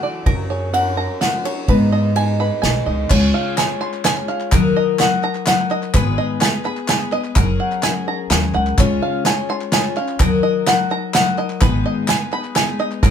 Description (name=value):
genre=indie folk with a building arrangement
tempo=127 BPM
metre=3/4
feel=straight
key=unclear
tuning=A4 = 439 Hz
part: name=fingerpicked acoustic archtop guitar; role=accompaniment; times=0.0-3.1 s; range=G#2 to B4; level=-24 LUFS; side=right 1 dB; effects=none
part: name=bluegrass banjo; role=arpeggios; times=0.0-13.1 s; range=A#4 to B#5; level=-21 LUFS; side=right 2 dB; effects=none
part: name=upright bass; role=bass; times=0.3-13.1 s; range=F#1 to G#2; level=-20 LUFS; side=equal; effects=none
part: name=unplugged drum kit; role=drums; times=0.3-13.1 s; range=crash cymbal, hi-hat, kick drum, ride cymbal, snare drum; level=-19 LUFS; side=equal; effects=none
part: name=picked twelve-string acoustic guitar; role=accompaniment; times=3.1-13.1 s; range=G#2 to C#5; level=-21 LUFS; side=left 6 dB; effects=none
part: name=group handclap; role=percussion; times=3.1-13.1 s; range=none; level=-27 LUFS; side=left 3 dB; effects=none
room=wet studio reverb, RT60 0.5 s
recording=band playing live in one room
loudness=-15 LUFS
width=side -8 dB against mid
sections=0.0-3.1 A section; 3.1-13.1 B section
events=none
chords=0.3 F#; 1.7 G#m; 3.1 C#; 4.5 D#m; 5.9 G#m; 7.4 F#add9; 8.8 C#; 10.2 D#m; 11.6 G#m